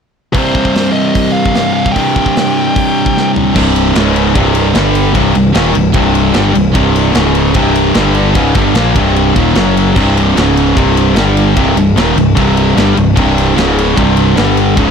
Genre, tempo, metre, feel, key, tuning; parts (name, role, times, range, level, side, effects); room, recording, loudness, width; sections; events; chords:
heavy metal; 150 BPM; 4/4; straight; C minor; A4 = 443 Hz
high-gain lead guitar; melody; 0.3-3.3 s; C5 to G5; -17 LUFS; right 1 dB; distortion
high-gain distorted guitar; riff; 0.3-14.9 s; C2 to Bb3; -14 LUFS; left 12 dB; distortion
high-gain distorted guitar; riff; 0.3-14.9 s; C2 to Bb3; -14 LUFS; right 11 dB; distortion
tight metal drum kit; drums; 0.3-14.9 s; crash cymbal, hi-hat, kick drum, ride cymbal, snare drum, toms; -17 LUFS; equal; soft clipping on kick, soft clipping on snare
thick fuzz guitar; riff; 3.6-14.9 s; C2 to Bb3; -17 LUFS; equal; distortion
growling picked electric bass; bass; 3.6-14.9 s; C1 to Bb1; -15 LUFS; equal; overdrive
light reverb; blown-out, overdriven recording, overdrive; -8 LUFS; side -6 dB against mid
0.3-3.6 A section; 3.6-14.9 B section
drum fill 3.2-3.6
0.3 C5; 4.0 Db5; 4.4 C5; 4.8 G5; 5.2 Cm; 7.2 Db5; 7.6 C5; 8.0 G5; 8.4 Cm; 9.6 F#5; 10.0 C5; 10.4 Db5; 10.8 C5; 11.2 G5; 11.6 Cm; 13.6 Db5; 14.0 C5; 14.4 G5